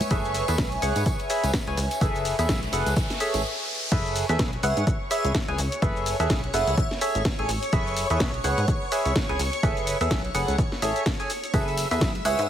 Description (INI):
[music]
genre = piano house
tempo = 126 BPM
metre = 4/4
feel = swing 58% on 16ths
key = F# minor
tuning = A4 = 439 Hz
[part]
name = string machine, violins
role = sustained chords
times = 0.0-12.5 s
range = C#5 to E6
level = -34 LUFS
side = equal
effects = ensemble chorus, sidechain pumping
[part]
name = garage drum kit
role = drums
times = 0.0-12.5 s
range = crash cymbal, hi-hat, shaker, snare drum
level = -31 LUFS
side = left 1 dB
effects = none
[part]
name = congas and tambourine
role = percussion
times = 0.0-3.4, 11.5-12.5 s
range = none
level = -36 LUFS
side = right 1 dB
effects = none
[part]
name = airy breathy pad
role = texture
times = 0.0-3.4 s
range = B4 to G#5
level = -33 LUFS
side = right 1 dB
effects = chorus, sidechain pumping
[part]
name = percussive organ stab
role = riff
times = 0.1-12.5 s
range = G#4 to G#5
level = -28 LUFS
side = equal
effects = analog chorus, sidechain pumping, tape echo
[part]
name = plucky analog bass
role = bass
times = 0.1-12.5 s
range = F#1 to G#2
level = -28 LUFS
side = equal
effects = tube saturation, sidechain pumping
[part]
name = electronic kick drum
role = drums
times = 0.1-12.1 s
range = none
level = -26 LUFS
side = equal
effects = none
[part]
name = riser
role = sound effects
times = 1.8-3.9 s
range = none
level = -34 LUFS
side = equal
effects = none
[part]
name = airy dreamy lead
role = melody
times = 4.6-6.8, 12.3-12.4 s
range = E5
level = -28 LUFS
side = right 2 dB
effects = chorus
[sound]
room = light reverb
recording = heavily compressed radio sound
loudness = -22 LUFS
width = side -10 dB against mid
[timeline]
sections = 0.0-3.9 A section; 3.9-12.5 B section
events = riser 1.8-3.9; stop 3.4-3.9; drop 3.9-12.5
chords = 0.1 F#m11; 0.8 C#m7; 2.0 F#m11; 3.0 Amaj7; 3.4 N.C.; 3.9 F#m11; 4.6 C#m7; 5.8 F#m11; 6.8 Amaj7; 7.7 F#m11; 8.4 C#m7; 9.6 F#m11; 10.6 Amaj7; 11.5 F#m11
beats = | 0.11 0.58 1.06 1.54 | 2.01 2.49 2.97 3.44 | 3.92 4.39 4.87 5.35 | 5.82 6.30 6.78 7.25 | 7.73 8.20 8.68 9.16 | 9.63 10.11 10.59 11.06 | 11.54 12.01 12.49